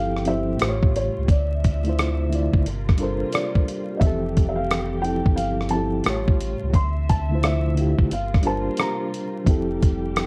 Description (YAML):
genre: lo-fi hip hop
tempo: 88 BPM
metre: 4/4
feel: swing 66% on 16ths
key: F major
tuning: A4 = 436 Hz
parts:
  - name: felt-muted upright piano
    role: melody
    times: 0.0-9.3 s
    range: C#5 to C6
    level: -32 LUFS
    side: equal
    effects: low-pass filter, tape echo
  - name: mellow reed electric piano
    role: accompaniment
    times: 0.0-10.3 s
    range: A2 to D5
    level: -28 LUFS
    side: equal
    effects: fast tremolo, low-pass filter
  - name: warm studio string section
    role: sustained chords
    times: 0.0-10.3 s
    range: C3 to E5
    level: -37 LUFS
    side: equal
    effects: low-pass filter
  - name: sub bass with octave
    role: bass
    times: 0.0-10.3 s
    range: F1 to D2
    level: -28 LUFS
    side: equal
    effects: none
  - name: dusty soul sampler-style drum kit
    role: drums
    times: 0.2-10.3 s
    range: hi-hat, kick drum, rim click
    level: -23 LUFS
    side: equal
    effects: none
room: light reverb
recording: vinyl crackle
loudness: -22 LUFS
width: mono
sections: 0.0-10.3 A section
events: none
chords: 0.0 Fmaj9; 0.6 A7b13; 1.3 Dm9; 2.6 Gm11; 4.0 Fmaj9; 6.1 A7b13; 6.7 Dm9; 8.1 Gm7; 9.5 Fmaj9